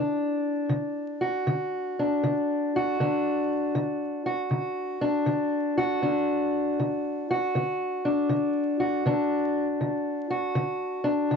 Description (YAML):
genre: blues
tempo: 79 BPM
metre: 4/4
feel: swing 65% on 8ths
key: D major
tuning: A4 = 439 Hz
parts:
  - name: fingerpicked steel-string acoustic guitar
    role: solo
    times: 0.0-11.4 s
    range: D3 to F#4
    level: -24 LUFS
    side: left 1 dB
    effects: none
room: wet booth ambience, RT60 0.2 s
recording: worn, warbling old tape, cassette tape, vinyl crackle, warbly pitch drift, nothing above 7.7 kHz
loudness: -24 LUFS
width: side -6 dB against mid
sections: 0.0-11.4 A section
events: none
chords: 0.0 D